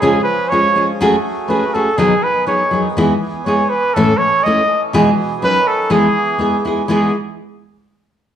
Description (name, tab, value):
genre	mexican folk, mariachi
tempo	122 BPM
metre	2/4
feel	rubato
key	E major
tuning	A4 = 438 Hz
part	warm trumpet	melody	0.0-7.2 s	G#4 to D#5	-16 LUFS	right 1 dB	none
part	nylon-string guitar	accompaniment	0.0-7.1 s	A2 to B4	-15 LUFS	left 1 dB	none
part	accordion	sustained chords	0.0-7.2 s	B2 to B4	-24 LUFS	right 2 dB	none
room	moderate large studio reverb, RT60 1.0 s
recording	band playing live in one room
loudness	-13 LUFS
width	side -9 dB against mid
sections	0.0-6.9 A section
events	none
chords	0.0 C#; 1.0 F#madd9; 2.0 B6; 3.0 E; 4.0 A; 4.9 E/B; 5.4 Badd9; 5.9 E